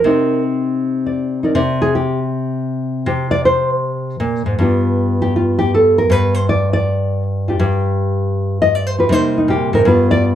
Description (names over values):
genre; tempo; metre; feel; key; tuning
solo jazz; 159 BPM; 4/4; swing 66% on 8ths; C harmonic minor; A4 = 440 Hz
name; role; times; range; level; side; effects
nylon-string guitar; solo; 0.0-10.3 s; G2 to Eb5; -14 LUFS; equal; none
room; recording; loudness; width
light reverb; band playing live in one room; -14 LUFS; side -10 dB against mid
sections
0.0-10.3 A section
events
nylon-string guitar solo 0.0-10.3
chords
0.0 Cm9; 4.6 G7; 9.1 Cm7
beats
| 0.03 0.41 0.79 1.17 | 1.54 1.92 2.30 2.68 | 3.05 3.43 3.81 4.19 | 4.56 4.94 5.32 5.70 | 6.08 6.45 6.83 7.21 | 7.59 7.96 8.34 8.72 | 9.10 9.48 9.86 10.23